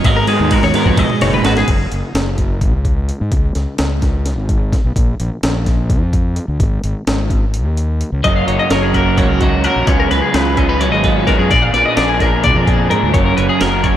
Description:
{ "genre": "math rock and midwest emo", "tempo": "256 BPM (eighths)", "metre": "7/8", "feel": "straight", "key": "F# major", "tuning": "A4 = 440 Hz", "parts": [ { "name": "twelve-string electric guitar", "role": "accompaniment", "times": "0.0-1.7, 8.2-14.0 s", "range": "F#2 to A#4", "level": "-18 LUFS", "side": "right 6 dB", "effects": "slapback echo" }, { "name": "twelve-string electric guitar", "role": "arpeggios", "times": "0.0-1.7, 8.2-14.0 s", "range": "F#4 to E#5", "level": "-17 LUFS", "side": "left 4 dB", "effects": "none" }, { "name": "fuzz fingered electric bass", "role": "bass", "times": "0.0-14.0 s", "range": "F#1 to G#2", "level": "-18 LUFS", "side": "equal", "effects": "overdrive" }, { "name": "breakbeat sampler-style drum kit", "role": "drums", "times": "0.0-13.9 s", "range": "crash cymbal, hi-hat, kick drum, ride cymbal, snare drum, toms", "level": "-17 LUFS", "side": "equal", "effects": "none" }, { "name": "raw garage guitar", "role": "riff", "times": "0.3-1.5, 8.2-14.0 s", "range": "F#2 to G#4", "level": "-19 LUFS", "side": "equal", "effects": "overdrive, slapback echo" } ], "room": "moderate lush hall reverb, RT60 1.7 s", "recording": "big arena sound", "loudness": "-12 LUFS", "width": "side -11 dB against mid", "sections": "0.0-1.7 A section; 1.7-14.0 B section", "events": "drum fill 0.3-1.7; kick and snare drop out 7.5-8.2", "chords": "0.0 G#m9; 1.7 F#5; 3.3 C#5; 5.0 A#5; 6.6 G#5; 8.2 F#6; 9.9 C#9sus4; 11.5 A#7b9; 13.1 F#add9", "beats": "| 0.05 0.28 0.51 0.75 0.98 1.21 1.45 | 1.68 1.92 2.15 2.38 2.62 2.85 3.08 | 3.32 3.55 3.79 4.02 4.25 4.49 4.72 | 4.96 5.19 5.42 5.66 5.89 6.13 6.36 | 6.60 6.83 7.06 7.30 7.53 7.77 8.00 | 8.23 8.47 8.70 8.94 9.17 9.40 9.64 | 9.87 10.11 10.34 10.57 10.81 11.04 11.28 | 11.51 11.74 11.98 12.21 12.44 12.68 12.91 | 13.14 13.38 13.61 13.85" }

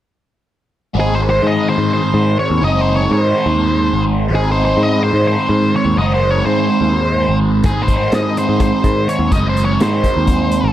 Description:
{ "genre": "psychedelic rock", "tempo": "250 BPM (eighths)", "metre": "7/8", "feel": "straight", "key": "G# major", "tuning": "A4 = 442 Hz", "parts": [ { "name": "biting overdriven guitar", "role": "riff", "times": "0.9-10.7 s", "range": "G#2 to D#4", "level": "-16 LUFS", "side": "right 1 dB", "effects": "phaser" }, { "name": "picked electric bass", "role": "bass", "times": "0.9-10.7 s", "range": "F#1 to G#2", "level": "-17 LUFS", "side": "left 1 dB", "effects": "none" }, { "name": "octave-fuzz lead guitar", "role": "melody", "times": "1.0-10.7 s", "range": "G#4 to D#5", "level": "-19 LUFS", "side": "left 1 dB", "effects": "distortion, dub echo" }, { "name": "vintage drum kit", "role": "drums", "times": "7.6-10.6 s", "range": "hi-hat, kick drum, snare drum", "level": "-18 LUFS", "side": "equal", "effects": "none" } ], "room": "light reverb, small room ambience", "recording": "echo-heavy mix", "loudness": "-12 LUFS", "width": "side -12 dB against mid", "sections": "0.9-10.7 A section", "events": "none", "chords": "0.9 G#", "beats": "| 0.94 1.18 1.42 1.66 1.90 2.14 2.38 | 2.62 2.86 3.10 3.34 3.58 3.82 4.06 | 4.30 4.54 4.78 5.02 5.26 5.50 5.74 | 5.98 6.22 6.46 6.70 6.93 7.17 7.41 | 7.65 7.89 8.13 8.37 8.61 8.85 9.09 | 9.33 9.57 9.80 10.04 10.28 10.52" }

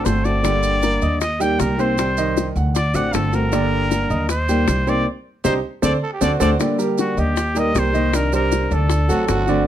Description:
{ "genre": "latin, Cuban son and guajira", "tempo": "156 BPM", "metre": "4/4", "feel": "straight", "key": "G harmonic minor, G minor from 6.6 s", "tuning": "A4 = 440 Hz", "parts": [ { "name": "trumpet with straight mute", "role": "melody", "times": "0.0-9.5 s", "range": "F#4 to G5", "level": "-23 LUFS", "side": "equal", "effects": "none" }, { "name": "nylon-string guitar", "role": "accompaniment", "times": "0.0-9.7 s", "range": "C3 to G4", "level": "-23 LUFS", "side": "left 3 dB", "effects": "none" }, { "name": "clear grand piano", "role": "arpeggios", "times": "0.0-9.6 s", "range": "D3 to Eb6", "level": "-23 LUFS", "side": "right 5 dB", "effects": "none" }, { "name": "upright bass", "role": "bass", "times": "0.0-9.7 s", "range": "G1 to Eb2", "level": "-21 LUFS", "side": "equal", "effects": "none" }, { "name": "bongos", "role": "percussion", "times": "0.1-9.7 s", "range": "none", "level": "-24 LUFS", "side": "left 7 dB", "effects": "none" }, { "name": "maracas", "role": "percussion", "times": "0.1-9.7 s", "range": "none", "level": "-33 LUFS", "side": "right 6 dB", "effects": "none" }, { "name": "growling trumpet", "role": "second line", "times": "6.0-6.6, 9.1-9.6 s", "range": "F#4 to A4", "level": "-25 LUFS", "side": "right 4 dB", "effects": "none" } ], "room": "light reverb", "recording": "dark, warm production", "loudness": "-17 LUFS", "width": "side -11 dB against mid", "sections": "0.0-6.6 A section; 6.6-9.7 B section", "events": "drum fill 5.1-6.6; band accent 5.1-6.6", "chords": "0.4 Gm; 1.2 Eb; 2.0 Cmadd9; 2.8 D7; 3.5 Gm; 4.3 Eb; 5.1 Cmadd9; 5.8 D7; 6.6 Gm; 7.4 Eb; 8.1 Cmadd9; 8.9 D7", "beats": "0.06 | 0.45 0.83 1.22 1.60 | 1.99 2.37 2.75 3.14 | 3.52 3.91 4.29 4.68 | 5.06 5.45 5.83 6.22 | 6.60 6.99 7.37 7.75 | 8.14 8.53 8.91 9.29" }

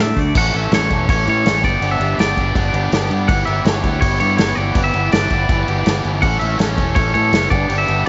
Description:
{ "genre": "indie rock", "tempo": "163 BPM", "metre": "4/4", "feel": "straight", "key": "unclear", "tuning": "A4 = 438 Hz", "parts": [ { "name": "twangy electric guitar", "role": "melody", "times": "0.0-8.1 s", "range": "C#5 to F#5", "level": "-22 LUFS", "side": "equal", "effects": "spring reverb, tape echo" }, { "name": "crunchy overdriven guitar", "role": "riff", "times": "0.0-8.1 s", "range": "E3 to A4", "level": "-27 LUFS", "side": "equal", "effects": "none" }, { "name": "raw garage guitar", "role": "riff", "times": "0.0-8.1 s", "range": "E3 to A4", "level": "-27 LUFS", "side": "equal", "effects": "overdrive, lush chorus" }, { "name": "growling fingered electric bass", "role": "bass", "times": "0.0-8.1 s", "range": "E1 to A2", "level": "-22 LUFS", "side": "equal", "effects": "overdrive" }, { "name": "unplugged drum kit", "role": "drums", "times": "0.2-8.1 s", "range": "crash cymbal, hi-hat, kick drum, snare drum", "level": "-21 LUFS", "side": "equal", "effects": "none" } ], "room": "small room ambience", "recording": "nothing above 7.7 kHz", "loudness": "-16 LUFS", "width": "mono", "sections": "0.3-8.1 A section", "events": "none", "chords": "0.3 A; 1.6 G; 3.3 Em/G; 6.2 A; 7.5 G", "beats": "| 0.35 0.72 1.08 1.45 | 1.82 2.19 2.55 2.92 | 3.29 3.65 4.02 4.39 | 4.76 5.12 5.49 5.86 | 6.22 6.59 6.96 7.33 | 7.69 8.06" }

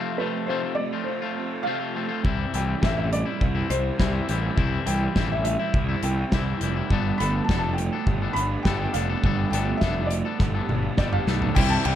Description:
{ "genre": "indie rock", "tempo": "103 BPM", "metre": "4/4", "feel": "straight", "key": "unclear", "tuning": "A4 = 442 Hz", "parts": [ { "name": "raw garage guitar", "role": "riff", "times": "0.0-12.0 s", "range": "C3 to G4", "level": "-31 LUFS", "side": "right 8 dB", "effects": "overdrive, ensemble chorus, slapback echo" }, { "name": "twangy electric guitar", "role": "riff", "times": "0.0-12.0 s", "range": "F2 to A4", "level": "-30 LUFS", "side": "left 9 dB", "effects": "none" }, { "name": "felt-muted upright piano", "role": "melody", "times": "0.2-12.0 s", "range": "B4 to B5", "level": "-30 LUFS", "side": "equal", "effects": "slapback echo, plate reverb" }, { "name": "fuzz picked electric bass", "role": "bass", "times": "2.2-12.0 s", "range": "F1 to C2", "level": "-26 LUFS", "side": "equal", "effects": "overdrive" }, { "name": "loose indie drum kit", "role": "drums", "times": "2.2-12.0 s", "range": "crash cymbal, hi-hat, kick drum, ride cymbal, snare drum, toms", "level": "-25 LUFS", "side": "equal", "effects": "none" } ], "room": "light reverb", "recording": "dark, warm production", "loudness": "-22 LUFS", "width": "side -11 dB against mid", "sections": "0.0-11.6 A section", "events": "drum fill 10.4-11.6", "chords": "0.0 F; 2.2 C; 6.9 Gadd9", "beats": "0.50 1.08 1.66 | 2.24 2.83 3.41 3.99 | 4.57 5.16 5.74 6.32 | 6.91 7.49 8.07 8.65 | 9.24 9.82 10.40 10.99 | 11.57" }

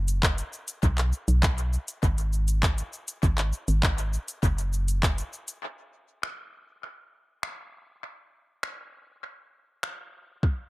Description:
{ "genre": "dance-pop", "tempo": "100 BPM", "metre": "4/4", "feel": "straight", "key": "unclear", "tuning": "A4 = 440 Hz", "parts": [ { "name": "organ-like FM bass", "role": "bass", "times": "0.0-5.2 s", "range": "F#1 to B1", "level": "-25 LUFS", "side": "equal", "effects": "sidechain pumping" }, { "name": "smooth R&B drum kit", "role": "drums", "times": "0.1-10.6 s", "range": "finger snaps, handclaps, hi-hat, kick drum, shaker", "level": "-26 LUFS", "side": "equal", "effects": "analog delay" } ], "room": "little or no reverb", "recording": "echo-heavy mix", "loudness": "-25 LUFS", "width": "side -20 dB against mid", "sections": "0.0-5.6 A section; 5.6-10.7 B section", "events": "none", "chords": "none", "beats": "0.23 | 0.83 1.43 2.03 2.63 | 3.23 3.83 4.43 5.03 | 5.63 6.23 6.83 7.43 | 8.03 8.63 9.23 9.83 | 10.43" }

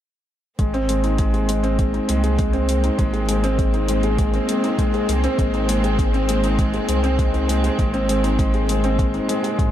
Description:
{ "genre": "piano and strings electronica", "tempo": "100 BPM", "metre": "4/4", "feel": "straight", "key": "Ab major", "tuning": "A4 = 445 Hz", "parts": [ { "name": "rich symphonic string section", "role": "sustained chords", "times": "0.6-9.7 s", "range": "Ab3 to C4", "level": "-27 LUFS", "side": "right 1 dB", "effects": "sidechain pumping" }, { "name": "warm upright piano", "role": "riff", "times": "0.6-9.7 s", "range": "Ab3 to Ab4", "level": "-21 LUFS", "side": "left 1 dB", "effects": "ping-pong delay" }, { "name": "warm sub bass", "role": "bass", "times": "0.6-9.7 s", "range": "Ab1 to Ab2", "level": "-22 LUFS", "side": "equal", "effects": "sidechain pumping" }, { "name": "electronic hi-hat", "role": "drums", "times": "0.6-9.7 s", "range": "none", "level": "-32 LUFS", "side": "left 2 dB", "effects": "overdrive" }, { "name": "electronic kick drum", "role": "drums", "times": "0.6-9.7 s", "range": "none", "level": "-21 LUFS", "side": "equal", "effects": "overdrive" } ], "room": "light reverb", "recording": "none", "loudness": "-17 LUFS", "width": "side -11 dB against mid", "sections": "0.6-9.7 A section", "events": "none", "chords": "0.6 Abadd9", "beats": "| 0.59 1.19 1.79 2.39 | 2.99 3.59 4.19 4.79 | 5.39 5.99 6.59 7.19 | 7.79 8.39 8.99 9.59" }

